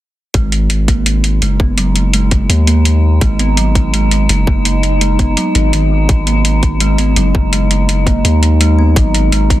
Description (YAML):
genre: half-time drum and bass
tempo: 167 BPM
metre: 4/4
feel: swing 56% on 16ths, half-time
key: G# minor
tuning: A4 = 439 Hz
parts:
  - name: kalimba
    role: arpeggios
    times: 0.3-9.6 s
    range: D#3 to B3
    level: -18 LUFS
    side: right 4 dB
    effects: dub echo
  - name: long sustained 808-style bass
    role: bass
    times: 0.3-9.6 s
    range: F#1 to D#2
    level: -12 LUFS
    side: equal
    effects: none
  - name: electronic hi-hat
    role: drums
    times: 0.3-9.6 s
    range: none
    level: -18 LUFS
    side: left 1 dB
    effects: none
  - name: electronic kick drum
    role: drums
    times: 0.3-9.6 s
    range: none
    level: -14 LUFS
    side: equal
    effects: none
  - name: metallic inharmonic drone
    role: texture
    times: 1.5-9.6 s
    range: D#4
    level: -20 LUFS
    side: left 1 dB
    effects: chorus, built-in reverb
room: light reverb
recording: dense, heavily limited modern master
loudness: -10 LUFS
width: side -14 dB against mid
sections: 0.3-9.6 A section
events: none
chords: 0.3 G#5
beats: | 0.34 0.70 1.06 1.42 | 1.78 2.14 2.50 2.86 | 3.22 3.58 3.94 4.29 | 4.65 5.01 5.37 5.73 | 6.09 6.45 6.81 7.17 | 7.53 7.89 8.25 8.61 | 8.97 9.32